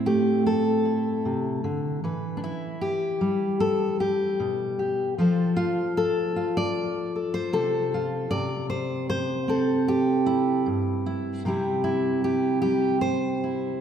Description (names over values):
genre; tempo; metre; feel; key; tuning
folk, solo fingerstyle acoustic guitar; 76 BPM; 4/4; straight; C major; A4 = 439 Hz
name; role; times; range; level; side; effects
fingerpicked steel-string acoustic guitar; solo; 0.0-13.8 s; G2 to D5; -23 LUFS; equal; none
room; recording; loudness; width
wet concert hall reverb, RT60 2.5 s; recorded in a church or concert hall; -23 LUFS; side -8 dB against mid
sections
0.0-13.8 A section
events
none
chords
0.0 Am; 2.0 Em; 5.2 F; 8.3 C